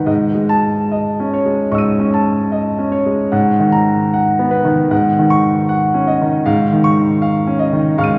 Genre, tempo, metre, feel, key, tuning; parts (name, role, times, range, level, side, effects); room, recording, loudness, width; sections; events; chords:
classical, impressionist solo piano; 71-80 BPM; 4/4; rubato; A4 = 439 Hz
bright concert grand piano; solo; 0.0-8.2 s; G#2 to D#7; -15 LUFS; equal
wet concert hall reverb, RT60 2.6 s; recorded in a church or concert hall, small room reverb; -15 LUFS; mono
0.0-8.2 A section
0.1 Amaj7#11/G#; 3.3 G#m9; 4.9 D#m7/G#; 6.5 C#add9/G#